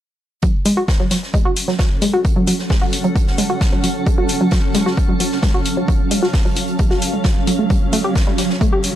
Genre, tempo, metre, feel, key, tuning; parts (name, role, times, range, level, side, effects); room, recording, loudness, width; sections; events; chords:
driving peak-time techno; 132 BPM; 4/4; straight; F# harmonic minor; A4 = 440 Hz
analog pluck; riff; 0.4-8.8 s; F#3 to G4; -20 LUFS; equal; chorus, tube saturation, sidechain pumping, tape echo
swarming drone; drone; 1.3-9.0 s; F#3 to C#4; -24 LUFS; right 2 dB; built-in reverb, sidechain pumping
electronic kick drum; drums; 0.4-8.7 s; -17 LUFS; equal; overdrive
street-band drum kit; drums; 0.4-8.9 s; hi-hat, snare drum; -30 LUFS; right 2 dB; sidechain pumping on hats, high-pass filter on hats, high-pass filter on snare, high-pass filter on room
granular cloud pad; texture; 2.0-9.0 s; D3 to Bb5; -26 LUFS; equal; built-in reverb, sidechain pumping
electronic hi-hat; drums; 0.7-8.9 s; -23 LUFS; left 3 dB; overdrive
light reverb, small room ambience; dry, gritty hardware recording, lossy compression artefacts; -14 LUFS; side -12 dB against mid
0.4-9.0 A section
0.4 F#m; 7.7 Gm